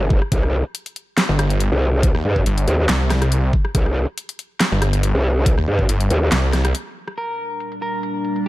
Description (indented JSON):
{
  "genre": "heavy wobble dubstep",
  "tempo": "140 BPM",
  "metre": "4/4",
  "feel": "swing 53% on 16ths, half-time",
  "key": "unclear",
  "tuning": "A4 = 440 Hz",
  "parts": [
    { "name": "growl bass", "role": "bass", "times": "0.0-6.3 s", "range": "G1 to G2", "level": "-17 LUFS", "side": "equal", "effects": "chorus, overdrive" },
    { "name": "electronic kick drum", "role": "drums", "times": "0.1-5.9 s", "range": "none", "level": "-18 LUFS", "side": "equal", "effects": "overdrive" },
    { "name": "dubstep drum kit", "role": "drums", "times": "0.2-8.5 s", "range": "handclaps, hi-hat, rim click, snare drum", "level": "-22 LUFS", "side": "equal", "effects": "overdrive, low-pass filter on snare, low-pass filter on hats" },
    { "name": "snarling distorted saw bass", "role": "bass", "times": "1.3-6.7 s", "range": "G1 to Eb2", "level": "-18 LUFS", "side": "equal", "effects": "distortion, overdrive" },
    { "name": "clean electric guitar", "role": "melody", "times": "7.2-8.5 s", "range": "Bb4", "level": "-26 LUFS", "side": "left 1 dB", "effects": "spring reverb, digital delay" },
    { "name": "evolving wavetable pad", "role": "sustained chords", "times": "7.5-8.5 s", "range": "Bb2 to D4", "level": "-24 LUFS", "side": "equal", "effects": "chorus, built-in reverb, phaser, sidechain pumping" }
  ],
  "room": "digital ambience",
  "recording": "dark, warm production",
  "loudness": "-17 LUFS",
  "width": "side -16 dB against mid",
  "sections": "0.0-7.2 A section; 7.2-8.5 B section",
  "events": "drop 0.0-7.2; break 6.3-7.2",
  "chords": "0.3 C5; 7.2 Gm",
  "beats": "| 0.32 0.75 1.18 1.60 | 2.03 2.46 2.89 3.32 | 3.75 4.18 4.60 5.03 | 5.46 5.89 6.32 6.75 | 7.18 7.60 8.03 8.46"
}